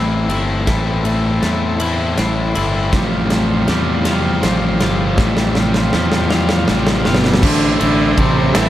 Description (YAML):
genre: post-rock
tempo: 53 BPM (dotted quarters)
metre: 6/8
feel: straight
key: A minor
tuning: A4 = 441 Hz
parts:
  - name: hand-pumped harmonium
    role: sustained chords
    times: 0.0-8.7 s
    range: G4 to C6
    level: -28 LUFS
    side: right 4 dB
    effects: none
  - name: twelve-string electric guitar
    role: arpeggios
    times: 0.0-7.4 s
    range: A2 to F4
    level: -23 LUFS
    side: left 1 dB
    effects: tape echo
  - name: fuzz guitar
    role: riff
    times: 0.0-8.7 s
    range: A2 to C5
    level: -20 LUFS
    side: left 4 dB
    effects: distortion
  - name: modern bright fingered electric bass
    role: bass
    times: 0.0-8.7 s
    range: G1 to E2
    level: -20 LUFS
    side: equal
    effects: none
  - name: huge arena drum kit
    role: drums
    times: 0.3-8.7 s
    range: crash cymbal, kick drum, ride cymbal, snare drum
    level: -19 LUFS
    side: equal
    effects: none
  - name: thick fuzz guitar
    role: riff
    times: 2.9-8.7 s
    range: F2 to A4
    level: -22 LUFS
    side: right 6 dB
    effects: distortion
  - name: clear cello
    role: melody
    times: 7.1-8.7 s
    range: B2 to E3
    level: -16 LUFS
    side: right 1 dB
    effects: none
room: moderate booth ambience, RT60 0.2 s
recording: vinyl crackle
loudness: -13 LUFS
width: side -13 dB against mid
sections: 0.0-7.4 A section; 7.4-8.7 B section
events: build-up 0.0-7.4; drum fill 0.0-7.4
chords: 0.0 Am; 2.9 Fsus2; 7.4 Am